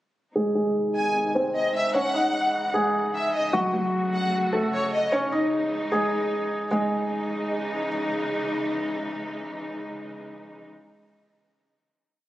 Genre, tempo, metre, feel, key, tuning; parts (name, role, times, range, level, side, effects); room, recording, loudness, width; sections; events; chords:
hip hop, trap; 151 BPM; 4/4; half-time; C# harmonic minor; A4 = 440 Hz
felt-muted upright piano; melody; 0.4-7.9 s; F#3 to D#5; -24 LUFS; equal; low-pass filter, tape echo
warm symphonic string section; sustained chords; 0.4-10.7 s; B#2 to F#4; -31 LUFS; equal; low-pass filter
warm studio violin section; second line; 1.0-5.1 s; C#5 to G#5; -26 LUFS; equal; tape echo
moderate lush hall reverb, RT60 2.8 s; recorded on a phone in the room, club reverb; -23 LUFS; side -15 dB against mid
0.4-6.7 breakdown; 6.7-9.9 final chord
filter sweep 0.4-6.7
0.4 G#; 1.9 C#madd9; 3.5 F#m; 5.1 C#madd9